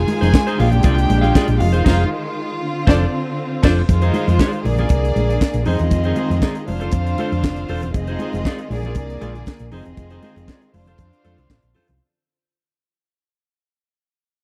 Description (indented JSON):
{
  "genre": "disco",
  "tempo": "118 BPM",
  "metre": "4/4",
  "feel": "straight",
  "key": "unclear",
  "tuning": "A4 = 439 Hz",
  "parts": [
    { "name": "warm studio violin section", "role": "second line", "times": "0.0-12.0 s", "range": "Ab3 to Ab5", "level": "-27 LUFS", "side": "equal", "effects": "none" },
    { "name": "rich studio string section", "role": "sustained chords", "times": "0.0-12.0 s", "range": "Bb2 to Ab4", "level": "-28 LUFS", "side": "equal", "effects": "none" },
    { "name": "hollow-body short-scale fingered electric bass", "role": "bass", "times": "0.0-12.0 s", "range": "E1 to F2", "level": "-21 LUFS", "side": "equal", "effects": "none" },
    { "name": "clean electric guitar", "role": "accompaniment", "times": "0.1-11.9 s", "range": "Eb4 to F5", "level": "-29 LUFS", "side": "equal", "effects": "spring reverb" },
    { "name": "tight funk drum kit", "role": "drums", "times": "0.1-12.0 s", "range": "crash cymbal, handclaps, hi-hat, kick drum, snare drum", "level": "-18 LUFS", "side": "equal", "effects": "none" },
    { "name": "congas", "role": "percussion", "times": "0.1-12.0 s", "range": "none", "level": "-29 LUFS", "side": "equal", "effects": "none" }
  ],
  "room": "studio ambience",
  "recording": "dry, close 1970s-style studio recording",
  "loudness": "-18 LUFS",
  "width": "mono",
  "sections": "0.0-3.9 A section; 3.9-12.0 B section",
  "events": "band accent 1.9-3.9; fade-out 3.9-12.0",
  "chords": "0.0 Fm7; 0.6 Bb7; 1.6 Fm7; 2.6 Dm7/F; 3.9 Fm7; 4.6 Bb7; 5.7 Fm7; 6.7 Dm7/F; 7.9 Fm7; 8.7 Bb7; 9.7 Fm7; 10.7 Dm7/F",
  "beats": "0.34 0.84 1.35 | 1.86 2.36 2.87 3.38 | 3.88 4.39 4.90 5.41 | 5.91 6.42 6.93 7.43 | 7.94 8.45 8.96 9.46 | 9.97 10.48 10.99 11.49"
}